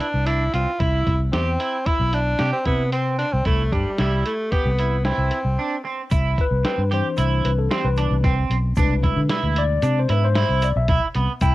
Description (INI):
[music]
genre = progressive instrumental, band music in an uneven meter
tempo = 113 BPM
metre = 5/4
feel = straight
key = C major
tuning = A4 = 440 Hz
[part]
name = clear tenor saxophone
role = melody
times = 0.0-5.8 s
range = G3 to F4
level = -24 LUFS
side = equal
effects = cassette tape, plate reverb, tape echo
[part]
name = clean electric guitar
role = arpeggios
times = 0.0-11.5 s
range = B3 to G4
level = -26 LUFS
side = right 5 dB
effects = lush chorus, cassette tape, plate reverb
[part]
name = lo-fi sampler-style drum kit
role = drums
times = 0.0-11.5 s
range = hi-hat, kick drum, snare drum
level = -24 LUFS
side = equal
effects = none
[part]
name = fingered electric bass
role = bass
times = 0.1-11.5 s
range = B1 to D3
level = -21 LUFS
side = equal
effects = none
[part]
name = tube shaker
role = percussion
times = 6.1-11.5 s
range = none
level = -47 LUFS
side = left 7 dB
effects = none
[part]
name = tine electric piano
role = accompaniment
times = 6.4-11.5 s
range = B2 to G5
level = -25 LUFS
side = left 5 dB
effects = medium stereo tremolo, cassette tape
[sound]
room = light reverb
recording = home recording on cassette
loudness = -18 LUFS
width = side -17 dB against mid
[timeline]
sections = 0.0-6.1 A section; 6.1-11.5 B section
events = break 5.6-6.1; tine electric piano solo 6.1-11.5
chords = 0.0 E7(no3); 0.8 C; 6.1 Cmaj7; 8.8 E7/C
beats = 0.27 | 0.80 1.33 1.86 2.40 2.93 | 3.46 3.99 4.53 5.06 5.59 | 6.12 6.65 7.18 7.71 8.24 | 8.77 9.30 9.83 10.36 10.89 | 11.42